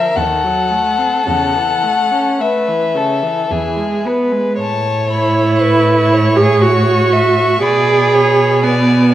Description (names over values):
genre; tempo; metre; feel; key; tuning
classical, slow romantic movement for string quartet; 52-61 BPM; 3/4; rubato; A major; A4 = 438 Hz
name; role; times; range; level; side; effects
clear violin; melody; 0.0-9.1 s; E5 to C#6; -19 LUFS; left 5 dB; none
rich violin; second line; 0.0-9.1 s; G#4 to E5; -18 LUFS; left 2 dB; none
clear viola; accompaniment; 0.0-9.1 s; C#3 to G#4; -15 LUFS; right 2 dB; none
rich cello; bass; 0.2-9.1 s; D#2 to B2; -18 LUFS; right 2 dB; none
room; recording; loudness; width
wet recital hall reverb, RT60 1.8 s; worn, warbling old tape, cassette tape, warbly pitch drift; -11 LUFS; side -12 dB against mid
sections
0.0-4.6 A section; 4.6-9.1 B section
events
none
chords
0.2 D#dim7; 1.3 A/E; 3.5 E; 4.6 A; 7.6 G#dim/B